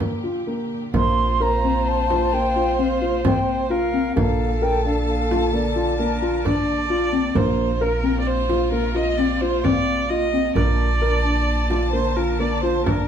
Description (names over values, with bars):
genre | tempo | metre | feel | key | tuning
contemporary instrumental, chamber music in an uneven meter | 131 BPM | 7/4 | straight | Bb major | A4 = 440 Hz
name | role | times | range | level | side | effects
rich symphonic string section | sustained chords | 0.0-13.1 s | Bb2 to A5 | -30 LUFS | left 1 dB | none
dark concert grand piano | arpeggios | 0.0-13.1 s | Bb3 to Bb4 | -23 LUFS | left 3 dB | none
upright bass | bass | 0.0-13.1 s | Bb1 to F2 | -25 LUFS | right 1 dB | none
frame drum | percussion | 0.0-13.1 s | none | -25 LUFS | right 3 dB | none
warm viola | second line | 0.9-13.1 s | A4 to Eb5 | -25 LUFS | right 2 dB | none
mellow silver concert flute | melody | 1.0-6.4 s | D5 to C6 | -25 LUFS | left 1 dB | none
room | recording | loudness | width
wet studio reverb, RT60 0.7 s | heard from further back in the room | -18 LUFS | side -8 dB against mid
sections
0.9-13.1 A section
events
none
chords
0.0 Bb/F; 0.9 Fsus4/Bb; 4.2 Bbmaj7; 7.4 Fsus4/Bb; 10.6 Bbmaj7